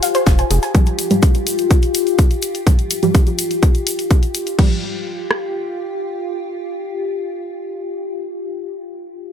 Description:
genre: melodic techno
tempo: 125 BPM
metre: 4/4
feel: straight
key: F minor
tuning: A4 = 440 Hz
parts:
  - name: evolving wavetable pad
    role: sustained chords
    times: 0.0-8.8 s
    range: F4 to G4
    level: -22 LUFS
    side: left 3 dB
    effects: ensemble chorus, built-in reverb, sidechain pumping
  - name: woody wave-folded pluck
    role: arpeggios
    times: 0.0-0.7 s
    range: G4 to Ab5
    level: -21 LUFS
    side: equal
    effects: lush chorus, sidechain pumping, tape echo
  - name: filtered dub chord stab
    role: stabs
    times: 0.0-8.8 s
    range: Ab2 to G3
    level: -21 LUFS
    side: right 2 dB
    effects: chorus, sidechain pumping, tape echo
  - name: house drum kit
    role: drums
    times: 0.0-4.7 s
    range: crash cymbal, hi-hat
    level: -25 LUFS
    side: left 4 dB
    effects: sidechain pumping on hats, sidechain pumping on perc, sidechain pumping on cymbals
  - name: loose indie drum kit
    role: drums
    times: 0.0-0.7 s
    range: hi-hat, snare drum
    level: -32 LUFS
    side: right 2 dB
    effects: sidechain pumping on hats, high-pass filter on hats, high-pass filter on snare, high-pass filter on room
  - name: egg shaker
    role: percussion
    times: 0.0-4.6 s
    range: none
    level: -28 LUFS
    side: left 2 dB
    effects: none
  - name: tight sequencer bass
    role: bass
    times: 0.3-0.6 s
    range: F1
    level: -17 LUFS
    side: equal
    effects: sidechain pumping
  - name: house drum kit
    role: drums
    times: 0.3-5.4 s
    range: kick drum, rim click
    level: -13 LUFS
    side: equal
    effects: none
room: light reverb, digital ambience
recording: none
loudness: -15 LUFS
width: side -9 dB against mid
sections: 0.0-4.6 A section; 4.6-8.4 B section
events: none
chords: 0.0 Fmadd9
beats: 0.27 | 0.75 1.23 1.71 2.19 | 2.67 3.15 3.63 4.11 | 4.59 5.07 5.55 6.03 | 6.51 6.99 7.47 7.95

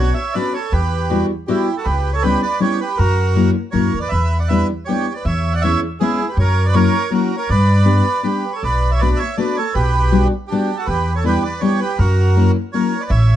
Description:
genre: musette waltz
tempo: 160 BPM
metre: 3/4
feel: rubato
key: unclear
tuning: A4 = 442 Hz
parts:
  - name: bandoneon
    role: melody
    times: 0.0-13.4 s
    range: D4 to F#5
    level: -20 LUFS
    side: right 4 dB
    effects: plate reverb
  - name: fingerpicked steel-string acoustic guitar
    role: accompaniment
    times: 0.0-12.9 s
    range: F#3 to G4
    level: -18 LUFS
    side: left 4 dB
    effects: none
  - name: upright bass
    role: bass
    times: 0.0-13.4 s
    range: A1 to G2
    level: -16 LUFS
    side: equal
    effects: none
room: light reverb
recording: dark, warm production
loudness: -15 LUFS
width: side -11 dB against mid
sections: 0.0-13.4 A section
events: none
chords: 0.0 Bmadd9; 0.7 Emadd9; 1.9 C#m7b5; 3.0 F#7; 4.1 Em7; 5.3 C#m7/E; 6.4 F#7; 7.5 G; 8.6 Bm7; 9.8 Gmaj7/B; 10.9 Em7; 12.0 F#7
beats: 0.36 | 0.74 1.12 1.49 | 1.86 2.23 2.60 | 2.98 3.35 3.73 | 4.11 4.50 4.88 | 5.26 5.63 6.00 | 6.37 6.75 7.12 | 7.49 7.87 8.25 | 8.63 9.01 9.39 | 9.76 10.13 10.50 | 10.87 11.24 11.61 | 11.98 12.36 12.74 | 13.11

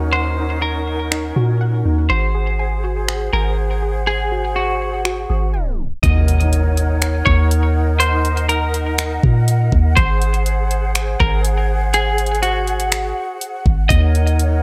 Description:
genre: hip hop, atmospheric cloud-rap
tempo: 122 BPM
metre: 4/4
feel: half-time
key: Eb dorian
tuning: A4 = 439 Hz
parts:
  - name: breathy large flute ensemble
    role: sustained chords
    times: 0.0-14.6 s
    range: Db4 to Gb5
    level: -27 LUFS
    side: equal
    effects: sidechain pumping
  - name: soft round pluck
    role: arpeggios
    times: 0.0-6.0 s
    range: Eb4 to Ab5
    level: -31 LUFS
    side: equal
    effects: chorus, low-pass filter, delay
  - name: soft 808-style bass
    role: bass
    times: 0.0-14.6 s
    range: Ab1 to Bb2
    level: -20 LUFS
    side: equal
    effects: none
  - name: semi-hollow electric guitar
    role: melody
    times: 0.1-14.6 s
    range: Gb4 to Eb5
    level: -24 LUFS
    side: equal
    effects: low-pass filter, delay
  - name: trap drum kit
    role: drums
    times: 1.1-14.5 s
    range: finger snaps, hi-hat, kick drum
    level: -22 LUFS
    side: equal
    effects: none
  - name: impact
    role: sound effects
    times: 6.0-8.0 s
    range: none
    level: -27 LUFS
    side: equal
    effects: none
room: little or no reverb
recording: tape stop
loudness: -18 LUFS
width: mono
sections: 0.0-6.0 A section; 6.0-14.6 B section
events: tape stop 5.5-6.0; impact 6.0-8.0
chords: 0.0 Ebm7; 2.1 Ab7; 6.0 Ebm7; 10.0 Ab7; 13.9 Ebm7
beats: | 0.13 0.62 1.12 1.61 | 2.10 2.59 3.08 3.58 | 4.07 4.56 5.05 5.54 | 6.04 6.53 7.02 7.51 | 8.00 8.49 8.99 9.48 | 9.97 10.46 10.95 11.45 | 11.94 12.43 12.92 13.41 | 13.90 14.40

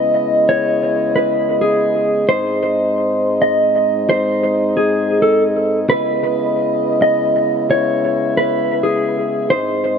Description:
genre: hip hop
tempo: 133 BPM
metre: 4/4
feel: half-time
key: C# minor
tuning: A4 = 440 Hz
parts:
  - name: mellow electric guitar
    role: melody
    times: 0.0-10.0 s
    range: G#4 to D#5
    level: -16 LUFS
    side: equal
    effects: analog delay
  - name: mellow French horn section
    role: sustained chords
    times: 0.0-10.0 s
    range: G#2 to E5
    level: -17 LUFS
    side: equal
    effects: none
room: moderate plate reverb, RT60 3.3 s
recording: echo-heavy mix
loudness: -14 LUFS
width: side -6 dB against mid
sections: 0.0-10.0 A section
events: none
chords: 0.0 C#m7; 2.3 G#; 5.9 C#m7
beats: 0.03 | 0.48 0.94 1.39 1.84 | 2.29 2.74 3.19 3.64 | 4.09 4.54 5.00 5.45 | 5.90 6.35 6.80 7.25 | 7.70 8.15 8.60 9.05 | 9.51 9.96

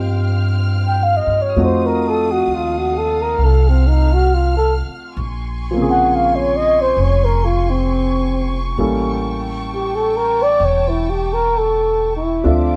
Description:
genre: jazz ballad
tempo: 66 BPM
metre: 4/4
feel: swing 66% on 8ths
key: unclear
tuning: A4 = 440 Hz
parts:
  - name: warm concert grand piano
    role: accompaniment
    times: 0.0-12.8 s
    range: Db3 to E5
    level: -25 LUFS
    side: equal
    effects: none
  - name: warm studio string section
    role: sustained chords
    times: 0.0-12.8 s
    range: A4 to F6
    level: -32 LUFS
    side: equal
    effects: none
  - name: upright bass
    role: bass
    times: 0.0-12.8 s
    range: E1 to G2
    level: -21 LUFS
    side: equal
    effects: none
  - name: breathy flugelhorn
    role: melody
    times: 0.9-12.8 s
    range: C4 to G5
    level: -19 LUFS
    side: equal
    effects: none
room: light reverb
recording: band playing live in one room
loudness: -17 LUFS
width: mono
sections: 0.0-12.4 A section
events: flugelhorn solo 0.0-12.4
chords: 0.0 Eb69; 1.6 F7b9; 5.2 Bbm9; 8.8 A7b9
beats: 0.65 | 1.56 2.47 3.37 4.27 | 5.16 6.06 6.96 7.86 | 8.77 9.68 10.59 11.51 | 12.43

